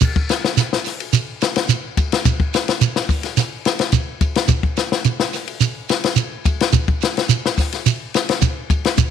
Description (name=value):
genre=afrobeat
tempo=107 BPM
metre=4/4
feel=straight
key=none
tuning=none
part: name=compact cocktail drum kit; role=drums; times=0.0-9.1 s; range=crash cymbal, hi-hat, kick drum, ride cymbal, snare drum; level=-18 LUFS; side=left 4 dB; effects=none
part: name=shekere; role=percussion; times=0.0-9.1 s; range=none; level=-18 LUFS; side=right 7 dB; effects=none
room=light reverb, small room reverb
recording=1960s-style stereo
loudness=-16 LUFS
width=side -8 dB against mid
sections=0.0-9.1 A section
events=none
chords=none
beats=| 0.01 0.57 1.13 1.69 | 2.25 2.81 3.37 3.93 | 4.49 5.05 5.61 6.17 | 6.73 7.29 7.85 8.41 | 8.97